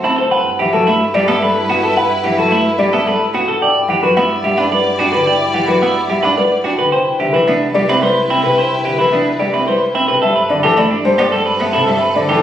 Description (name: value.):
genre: classical, minimalist pattern music.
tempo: 109 BPM.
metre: 3/4.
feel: straight.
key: unclear.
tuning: A4 = 441 Hz.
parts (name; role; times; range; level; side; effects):
dark concert grand piano; melody; 0.0-12.4 s; A4 to A5; -16 LUFS; left 3 dB; none.
rich cello; accompaniment; 0.0-12.4 s; C3 to D4; -20 LUFS; right 1 dB; none.
rich studio violin section; sustained chords; 0.0-12.4 s; C4 to D5; -22 LUFS; left 2 dB; none.
clean electric guitar; arpeggios; 0.0-12.4 s; D4 to D5; -16 LUFS; right 3 dB; none.
rich double bass; bass; 0.0-12.4 s; C2 to G2; -28 LUFS; right 2 dB; none.
room: wet recital hall reverb, RT60 1.5 s.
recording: recorded on a phone in the room, studio reverb, compression.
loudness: -12 LUFS.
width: side -10 dB against mid.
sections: 0.0-10.2 A section; 10.2-12.4 B section.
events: none.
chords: 0.3 G69; 3.6 Em7/G; 6.9 Cmaj7; 10.2 Am9/G.